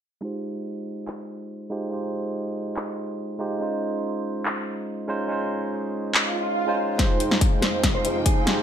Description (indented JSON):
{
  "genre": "future bass",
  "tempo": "142 BPM",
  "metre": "4/4",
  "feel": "swing 53% on 16ths, half-time",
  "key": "F minor",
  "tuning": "A4 = 441 Hz",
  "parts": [
    { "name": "barky tine electric piano", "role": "accompaniment", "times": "0.2-8.6 s", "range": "Ab3 to G5", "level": "-28 LUFS", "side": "right 1 dB", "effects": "sidechain pumping, low-pass filter, dub echo" },
    { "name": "big-room dance drum kit", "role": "drums", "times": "1.1-8.6 s", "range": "handclaps, hi-hat, snare drum", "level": "-24 LUFS", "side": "left 1 dB", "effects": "studio reverb" },
    { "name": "swell and riser", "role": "sound effects", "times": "6.2-8.6 s", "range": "none", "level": "-29 LUFS", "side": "right 2 dB", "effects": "none" },
    { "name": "mellow electric guitar", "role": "melody", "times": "7.0-8.6 s", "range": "Ab4 to C5", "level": "-28 LUFS", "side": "right 2 dB", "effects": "sidechain pumping, dub echo" },
    { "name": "clear studio string section", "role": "sustained chords", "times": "7.0-8.6 s", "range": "F2 to G5", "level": "-35 LUFS", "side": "left 1 dB", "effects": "sidechain pumping, low-pass filter" },
    { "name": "soft supersaw", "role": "riff", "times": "7.0-8.6 s", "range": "Eb4 to F5", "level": "-28 LUFS", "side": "equal", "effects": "sidechain pumping, low-pass filter" },
    { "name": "electronic kick drum", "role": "drums", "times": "7.0-8.3 s", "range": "none", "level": "-22 LUFS", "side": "left 1 dB", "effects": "studio reverb" }
  ],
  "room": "moderate digital room reverb, RT60 0.9 s",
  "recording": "low-pass filter",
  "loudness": "-23 LUFS",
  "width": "side -9 dB against mid",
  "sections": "0.2-7.0 A section; 7.0-8.6 B section",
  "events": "filter sweep on tine electric piano 0.2-7.0; filter sweep 0.2-7.0; swell 6.2-7.0; build-up 7.0-8.6; drum fill 7.0-8.6; filter sweep on supersaw synth 7.0-8.6",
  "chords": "0.2 Fm7; 3.6 Dbmaj7; 7.0 Fm7",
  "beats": "| 0.23 0.65 1.07 1.50 | 1.92 2.34 2.77 3.19 | 3.61 4.03 4.46 4.88 | 5.30 5.72 6.14 6.57 | 6.99 7.41 7.84 8.26"
}